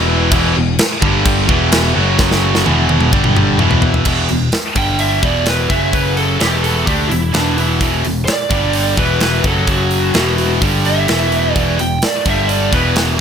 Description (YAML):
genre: hard rock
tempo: 128 BPM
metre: 4/4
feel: straight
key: E minor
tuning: A4 = 440 Hz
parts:
  - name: heavy high-gain guitar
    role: riff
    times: 0.0-13.2 s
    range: E2 to D4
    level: -23 LUFS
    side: left 1 dB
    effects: distortion
  - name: high-gain distorted guitar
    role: riff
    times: 0.0-13.2 s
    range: E2 to D4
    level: -20 LUFS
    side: left 14 dB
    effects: distortion
  - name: tight distorted guitar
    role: riff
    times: 0.0-13.2 s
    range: E2 to D4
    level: -19 LUFS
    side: right 14 dB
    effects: distortion
  - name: picked electric bass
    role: bass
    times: 0.0-13.2 s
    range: E1 to D2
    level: -18 LUFS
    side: equal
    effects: none
  - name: tight metal drum kit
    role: drums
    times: 0.3-13.1 s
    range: crash cymbal, hi-hat, kick drum, snare drum, toms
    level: -18 LUFS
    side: equal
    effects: none
  - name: lead guitar through a small cranked amp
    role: melody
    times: 4.8-13.0 s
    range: D4 to G5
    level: -19 LUFS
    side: right 1 dB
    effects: overdrive
room: light reverb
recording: none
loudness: -12 LUFS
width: side -7 dB against mid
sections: 0.0-4.1 A section; 4.1-13.2 B section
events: drum fill 2.2-4.1; lead electric guitar solo 4.1-13.2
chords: 0.0 E5; 1.0 G5; 1.5 E5; 2.0 F#5; 2.7 E5; 3.1 G5; 3.6 E5; 4.8 G5; 5.2 E5; 5.7 F#5; 6.4 E5; 8.5 G5; 9.0 E5; 9.4 F#5; 10.2 E5; 10.6 G5; 11.1 E5; 12.3 G5; 12.7 E5